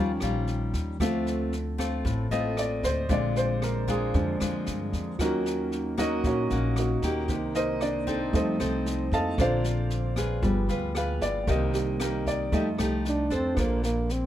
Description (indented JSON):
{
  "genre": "bossa nova",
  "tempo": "114 BPM",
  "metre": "4/4",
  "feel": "straight",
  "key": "Bb major",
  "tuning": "A4 = 440 Hz",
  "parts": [
    { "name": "nylon-string guitar", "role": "accompaniment", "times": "0.0-14.3 s", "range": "A2 to C5", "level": "-31 LUFS", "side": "left 2 dB", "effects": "none" },
    { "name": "warm grand piano", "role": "accompaniment", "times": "0.0-14.3 s", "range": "D3 to A5", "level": "-29 LUFS", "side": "right 1 dB", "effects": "none" },
    { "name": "upright bass", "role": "bass", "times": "0.0-14.3 s", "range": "G1 to G2", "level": "-30 LUFS", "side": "equal", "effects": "none" },
    { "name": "jazz brush drum kit", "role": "drums", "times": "0.2-14.2 s", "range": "kick drum, rim click, snare drum", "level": "-34 LUFS", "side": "equal", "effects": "none" },
    { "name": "dark trombone", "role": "melody", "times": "13.1-14.3 s", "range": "Bb3 to D4", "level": "-28 LUFS", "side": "right 1 dB", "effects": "none" }
  ],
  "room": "light reverb",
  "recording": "close, detailed microphones",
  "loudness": "-25 LUFS",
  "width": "side -12 dB against mid",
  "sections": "0.0-13.6 A section",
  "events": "grand piano solo 0.0-13.6",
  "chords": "0.0 Eb9; 1.0 Dm7; 3.1 Bb7; 5.2 Ebm7; 7.3 Cm7; 8.3 F7; 9.4 Bbmaj9; 10.4 G7b9; 11.5 Cm7; 12.5 F9; 13.6 Bbmaj9"
}